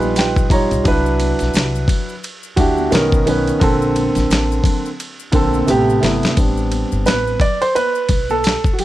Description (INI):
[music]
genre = hip hop, jazz-hop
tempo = 87 BPM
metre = 4/4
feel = swing 60% on 16ths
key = A dorian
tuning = A4 = 440 Hz
[part]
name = dark baby grand piano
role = accompaniment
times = 0.0-8.8 s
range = C3 to A#5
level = -17 LUFS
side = right 2 dB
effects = plate reverb
[part]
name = upright bass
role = bass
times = 0.0-8.5 s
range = G1 to D2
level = -21 LUFS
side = left 1 dB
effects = none
[part]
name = congas and maracas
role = percussion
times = 0.0-8.8 s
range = none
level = -31 LUFS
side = left 19 dB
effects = none
[part]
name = dusty soul sampler-style drum kit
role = drums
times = 0.2-8.8 s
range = hi-hat, kick drum, ride cymbal, snare drum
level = -19 LUFS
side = equal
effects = overdrive, vintage 12-bit sampler grit
[sound]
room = light reverb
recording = none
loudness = -14 LUFS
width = side -15 dB against mid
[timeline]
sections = 0.0-6.4 A section; 6.4-8.8 B section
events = grand piano fill 0.0-0.9; drum fill 5.7-6.4; grand piano solo 6.4-8.8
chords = 0.0 G7alt; 0.9 Cmaj9#11; 2.9 Bmaj9; 3.6 Bbmaj9; 5.7 Am9; 6.4 Am11